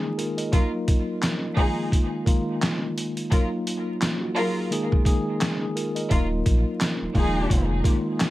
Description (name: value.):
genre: hip hop, boom-bap hip-hop.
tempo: 86 BPM.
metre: 4/4.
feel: swing 58% on 16ths.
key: Eb minor.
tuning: A4 = 439 Hz.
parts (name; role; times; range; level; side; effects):
mellow tine electric piano; accompaniment; 0.0-8.3 s; Eb3 to Eb5; -26 LUFS; left 1 dB; medium stereo tremolo, cassette tape, high-pass filter, low-pass filter.
trip hop sampler-style drum kit; drums; 0.2-8.3 s; handclaps, hi-hat, kick drum, snare drum; -23 LUFS; equal; none.
warm studio string section; stabs; 0.5-7.6 s; F3 to Bb4; -30 LUFS; right 1 dB; high-pass filter, low-pass filter, tape echo.
saturated sub bass; bass; 6.1-7.8 s; Eb1 to Bb1; -25 LUFS; equal; none.
room: light reverb.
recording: vinyl crackle.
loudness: -21 LUFS.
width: side -16 dB against mid.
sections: 0.0-8.3 A section.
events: none.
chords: 0.0 Absus2/Eb; 0.5 Ebmadd9; 1.6 Bb7sus4/Eb; 3.3 Ebmadd9; 4.7 Absus2/Eb; 6.1 Ebmadd9; 7.2 Bb7sus4/Eb.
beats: | 0.53 1.22 1.92 2.62 | 3.32 4.01 4.71 5.41 | 6.11 6.80 7.50 8.20.